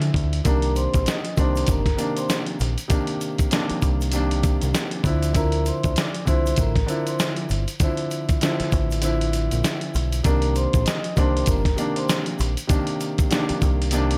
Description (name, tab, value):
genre	hip hop, boom-bap hip-hop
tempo	98 BPM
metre	4/4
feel	swing 60% on 16ths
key	C dorian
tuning	A4 = 440 Hz
part	dark grand piano	accompaniment	0.0-14.2 s	C3 to E4	-28 LUFS	equal	cassette tape
part	deep dub picked electric bass	bass	0.0-14.2 s	G1 to D3	-26 LUFS	equal	none
part	dusty soul sampler-style drum kit	drums	0.0-14.2 s	hi-hat, kick drum, snare drum	-26 LUFS	equal	none
part	vibraphone with soft mallets	melody	0.4-12.1 s	Bb4 to Eb6	-31 LUFS	equal	none
part	tube shaker	percussion	0.5-14.1 s	none	-42 LUFS	equal	none
room	little or no reverb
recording	none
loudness	-22 LUFS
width	mono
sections	0.0-10.2 A section; 10.2-14.2 B section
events	kick muted 9.0-10.2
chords	0.5 Cm9; 5.0 Dm9; 10.2 Cm9